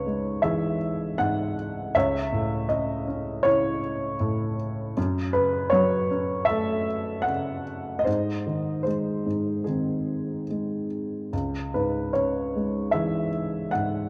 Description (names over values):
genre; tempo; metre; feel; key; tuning
classical, lyrical solo piano; 72-80 BPM; 4/4; rubato; C# minor; A4 = 439 Hz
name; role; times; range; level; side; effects
dark upright piano; solo; 0.0-14.1 s; C#2 to F#5; -26 LUFS; equal; none
room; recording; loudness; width
wet spring reverb, RT60 2.2 s; none; -26 LUFS; mono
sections
0.0-14.1 A section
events
none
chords
0.0 C#m; 1.9 A/C#; 5.0 F#m; 8.1 G#; 11.3 C#m